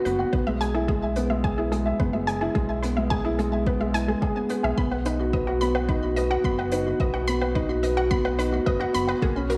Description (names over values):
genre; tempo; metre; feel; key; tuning
piano and strings electronica; 108 BPM; 4/4; straight; unclear; A4 = 441 Hz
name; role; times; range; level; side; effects
dark upright piano; riff; 0.0-9.6 s; G#3 to G#5; -27 LUFS; equal; digital delay
analog pluck; arpeggios; 0.1-9.6 s; G#4 to B5; -33 LUFS; equal; chorus, sidechain pumping, digital delay
round analog bass; bass; 0.1-9.6 s; F#1 to B1; -32 LUFS; equal; sidechain pumping
hi-hat; drums; 0.1-9.6 s; none; -45 LUFS; equal; none
electronic kick drum; drums; 0.3-9.3 s; none; -29 LUFS; equal; none
room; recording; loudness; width
light reverb, small room reverb; studio ambience; -24 LUFS; mono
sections
0.0-9.6 A section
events
none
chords
0.3 E; 4.8 B